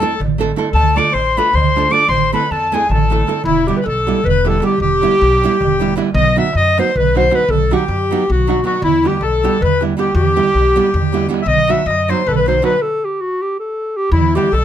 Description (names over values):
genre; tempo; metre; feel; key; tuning
balkan folk, Balkan wedding band; 314 BPM (eighths); 7/8; straight; A harmonic minor, E harmonic minor from 3.4 s; A4 = 440 Hz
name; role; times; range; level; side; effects
warm clarinet; melody; 0.0-14.6 s; E4 to D6; -16 LUFS; equal; none
accordion; second line; 0.0-14.6 s; E4 to E5; -21 LUFS; left 7 dB; none
nylon-string guitar; accompaniment; 0.0-14.5 s; E3 to A4; -19 LUFS; right 7 dB; none
upright bass; bass; 0.0-14.6 s; E1 to F#2; -18 LUFS; left 1 dB; none
darbuka; percussion; 0.0-14.6 s; none; -22 LUFS; right 6 dB; none
room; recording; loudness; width
light reverb; close, detailed microphones; -12 LUFS; side -10 dB against mid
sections
0.0-3.4 A section; 3.4-14.1 B section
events
drum fill 8.2-8.8; stop 12.8-14.1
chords
0.0 Am; 0.7 Dm; 2.1 Am; 3.4 Em; 6.1 B; 8.8 Em; 11.5 B; 12.8 N.C.; 14.1 Em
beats
0.15 0.34 0.54 | 0.73 0.92 1.12 1.31 1.50 1.70 1.89 | 2.09 2.28 2.47 2.67 2.86 3.05 3.25 | 3.44 3.63 3.83 4.02 4.21 4.41 4.60 | 4.79 4.98 5.18 5.37 5.56 5.75 5.95 | 6.14 6.33 6.52 6.71 6.90 7.10 7.29 | 7.48 7.67 7.86 8.05 8.24 8.43 8.62 | 8.82 9.01 9.20 9.39 9.58 9.77 9.96 | 10.15 10.34 10.53 10.72 10.91 11.10 11.29 | 11.48 11.67 11.86 12.05 12.24 12.43 12.62 | 12.81 13.00 13.19 13.38 13.57 13.76 13.95 | 14.13 14.32 14.51